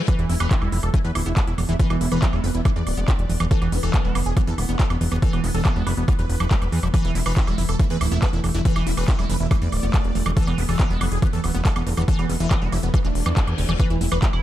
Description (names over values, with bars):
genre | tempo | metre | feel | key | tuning
psychedelic trance | 140 BPM | 4/4 | straight | E major | A4 = 440 Hz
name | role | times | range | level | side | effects
evolving wavetable pad | sustained chords | 0.0-14.4 s | E3 to B3 | -31 LUFS | right 3 dB | chorus, built-in reverb, phaser, vintage 12-bit sampler grit, sidechain pumping
liquid acid bass | riff | 0.0-14.4 s | D3 to E4 | -28 LUFS | equal | chorus, auto-pan, sidechain pumping, digital delay
reverse cymbal | sound effects | 0.0-0.1, 13.1-13.8 s | none | -36 LUFS | left 6 dB | none
supersaw stab | melody | 0.1-14.4 s | B3 to D5 | -31 LUFS | equal | phaser, sidechain pumping, digital delay
electronic kick drum | drums | 0.1-14.3 s | none | -20 LUFS | equal | studio reverb
techno drum kit | drums | 0.1-14.4 s | handclaps, hi-hat, woodblock | -30 LUFS | right 2 dB | overdrive, studio reverb
fat analog bass | bass | 0.2-14.4 s | D1 to E2 | -23 LUFS | equal | none
room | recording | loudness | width
digital ambience | dark, warm production | -18 LUFS | side -13 dB against mid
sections
0.1-14.4 A section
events
drop 0.1-14.4; reverse cymbal 13.1-13.8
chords
0.1 E5